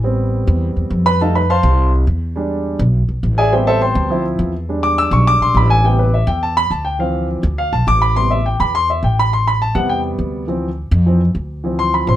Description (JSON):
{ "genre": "Afro-Cuban jazz", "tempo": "207 BPM", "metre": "4/4", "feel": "straight", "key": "A minor", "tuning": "A4 = 440 Hz", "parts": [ { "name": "warm concert grand piano", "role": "accompaniment", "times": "0.0-12.2 s", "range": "C3 to E6", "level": "-16 LUFS", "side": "equal", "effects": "none" }, { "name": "upright bass", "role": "bass", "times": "0.0-12.2 s", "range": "A1 to F2", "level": "-16 LUFS", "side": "equal", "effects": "none" } ], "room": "light reverb", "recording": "dark, warm production", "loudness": "-14 LUFS", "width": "side -12 dB against mid", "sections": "0.0-5.8 A section; 5.8-12.2 A section", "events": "grand piano solo 0.0-12.2", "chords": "0.0 Am7; 1.2 F7; 2.4 E7#9; 3.5 Am7; 4.1 Dm7; 4.7 E7#9; 5.8 Am7; 7.0 Dm7; 8.2 Am7; 10.5 Dm7" }